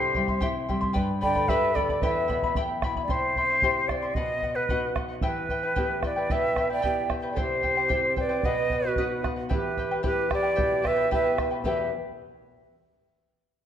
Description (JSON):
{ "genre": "andean folk, Andean ensemble", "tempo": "112 BPM", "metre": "2/4", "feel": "straight", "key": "E minor", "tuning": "A4 = 440 Hz", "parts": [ { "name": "mellow quena", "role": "melody", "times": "0.0-11.9 s", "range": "B4 to G5", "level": "-27 LUFS", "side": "left 1 dB", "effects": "none" }, { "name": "polished pan flute", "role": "second line", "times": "0.0-2.6, 6.3-11.9 s", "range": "F#4 to D5", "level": "-30 LUFS", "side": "right 4 dB", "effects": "none" }, { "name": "charango", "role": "accompaniment", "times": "0.0-11.9 s", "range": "E4 to C6", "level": "-31 LUFS", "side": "left 2 dB", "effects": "none" }, { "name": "nylon-string guitar", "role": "accompaniment", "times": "0.0-11.9 s", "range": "E2 to B4", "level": "-33 LUFS", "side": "left 2 dB", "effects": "none" }, { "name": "bombo", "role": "percussion", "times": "0.1-11.9 s", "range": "none", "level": "-32 LUFS", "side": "right 2 dB", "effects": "none" } ], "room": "wet recital hall reverb, RT60 1.7 s", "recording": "dark, warm production", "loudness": "-23 LUFS", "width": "side -9 dB against mid", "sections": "0.0-3.1 A section; 3.1-11.7 B section; 11.7-12.7 C section", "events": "none", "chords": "0.0 C; 1.0 G; 2.0 Em; 3.1 C; 4.2 B; 5.2 Em; 7.4 C; 8.4 B; 9.5 Em" }